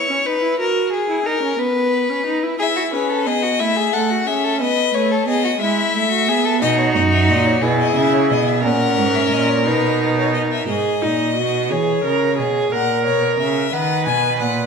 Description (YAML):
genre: classical, baroque-style fugue for string quartet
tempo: 60 BPM (dotted quarters)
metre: 6/8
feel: straight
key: unclear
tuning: A4 = 439 Hz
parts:
  - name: rich violin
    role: second line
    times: 0.0-10.6 s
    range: E4 to C#5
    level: -20 LUFS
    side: left 3 dB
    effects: none
  - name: warm viola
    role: accompaniment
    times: 0.0-14.7 s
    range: G#3 to B4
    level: -21 LUFS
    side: right 3 dB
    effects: none
  - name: rich violin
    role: melody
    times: 2.6-14.7 s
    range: B4 to G#5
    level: -21 LUFS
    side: left 8 dB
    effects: none
  - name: warm cello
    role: bass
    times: 6.6-14.7 s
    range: F#2 to E3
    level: -20 LUFS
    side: right 4 dB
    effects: none
room: wet recital hall reverb, RT60 1.8 s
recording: minimal, uncompressed stereo recording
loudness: -15 LUFS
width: side -5 dB against mid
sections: 0.0-10.7 A section; 10.7-14.7 B section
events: none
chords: 0.0 C#m7; 0.6 F#; 1.6 B; 2.6 E; 3.6 F#m7/A; 4.6 B; 5.6 E/G#; 6.6 B; 7.6 C#m7/B; 8.6 F#; 9.7 B; 10.7 G#m; 11.7 C#m; 12.7 F#/A#; 13.7 B